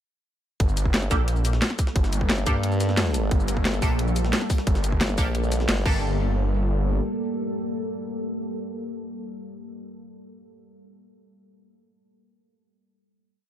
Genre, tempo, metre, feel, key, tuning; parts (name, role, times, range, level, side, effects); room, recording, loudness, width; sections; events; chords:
dark technical drum and bass; 177 BPM; 4/4; straight; G minor; A4 = 440 Hz
deep dark ambient pad; sustained chords; 1.6-9.5 s; G3 to A4; -31 LUFS; equal; chorus, built-in reverb, sidechain pumping
wide detuned saw bass; bass; 0.6-7.0 s; G1 to Bb1; -24 LUFS; equal; chorus, overdrive
drum and bass drum kit; drums; 0.6-5.9 s; crash cymbal, hi-hat, shaker, snare drum; -26 LUFS; left 1 dB; overdrive, studio reverb
electronic kick drum; drums; 0.6-5.9 s; -23 LUFS; equal; overdrive, studio reverb
jungle sampler-style drum kit; drums; 0.6-5.8 s; hi-hat, snare drum; -36 LUFS; equal
formant-sweep wobble bass; bass; 0.9-5.9 s; G1 to G2; -25 LUFS; equal; chorus
band-passed chord stab; stabs; 1.1-9.5 s; Bb3 to A4; -32 LUFS; right 2 dB; phaser, analog chorus, ping-pong delay
digital ambience; -22 LUFS; side -11 dB against mid
0.6-6.0 drop; 6.0-8.7 final hit
drop 0.6-6.0
0.6 Gmadd9